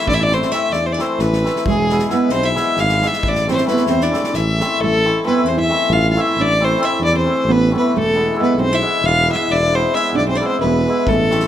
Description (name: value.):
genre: balkan folk, Balkan wedding band.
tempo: 267 BPM (eighths).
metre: 7/8.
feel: straight.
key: A harmonic minor.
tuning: A4 = 440 Hz.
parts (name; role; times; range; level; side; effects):
dark fiddle; melody; 0.0-11.5 s; G#4 to F5; -18 LUFS; equal; none.
nylon-string guitar; second line; 0.0-11.5 s; G#3 to F4; -21 LUFS; right 4 dB; none.
hammered dulcimer; accompaniment; 0.0-11.5 s; E3 to E4; -21 LUFS; left 3 dB; none.
mellow tuba; bass; 0.1-11.4 s; E1 to E2; -21 LUFS; equal; none.
natural country drum kit; percussion; 0.1-4.6, 11.1-11.4 s; kick drum, snare drum; -26 LUFS; equal; none.
room: moderate recital hall reverb, RT60 1.6 s.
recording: none.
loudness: -14 LUFS.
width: side -10 dB against mid.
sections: 0.0-4.8 A section; 4.8-11.5 A section.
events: none.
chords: 0.0 Am; 1.6 E; 3.2 Am; 7.9 E.